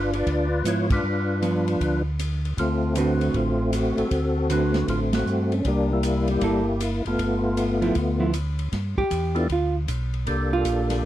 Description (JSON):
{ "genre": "soul jazz organ trio", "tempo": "156 BPM", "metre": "4/4", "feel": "swing 65% on 8ths", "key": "G mixolydian", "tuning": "A4 = 439 Hz", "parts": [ { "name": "percussive tonewheel organ", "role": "melody", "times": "0.0-11.1 s", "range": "G3 to D5", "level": "-24 LUFS", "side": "left 1 dB", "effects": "slow rotary speaker, overdrive, chorus vibrato" }, { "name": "mellow tonewheel organ", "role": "bass", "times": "0.0-11.0 s", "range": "F#1 to Ab2", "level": "-26 LUFS", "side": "equal", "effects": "slow rotary speaker" }, { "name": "open jazz drum kit", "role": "drums", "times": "0.1-11.0 s", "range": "hi-hat, kick drum, ride cymbal, snare drum", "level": "-32 LUFS", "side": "equal", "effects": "none" }, { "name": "hollow-body jazz guitar", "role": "accompaniment", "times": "0.7-11.0 s", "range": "D3 to B4", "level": "-25 LUFS", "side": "right 4 dB", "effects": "none" } ], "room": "little or no reverb", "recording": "dry, close 1970s-style studio recording", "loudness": "-21 LUFS", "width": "side -13 dB against mid", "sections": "0.0-8.7 A section; 8.7-11.1 B section", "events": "band accent 0.8, 5.1; hollow-body jazz guitar solo 8.7-11.1", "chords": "0.0 G; 2.6 D6; 5.6 C6; 7.2 G13; 10.3 Csus2" }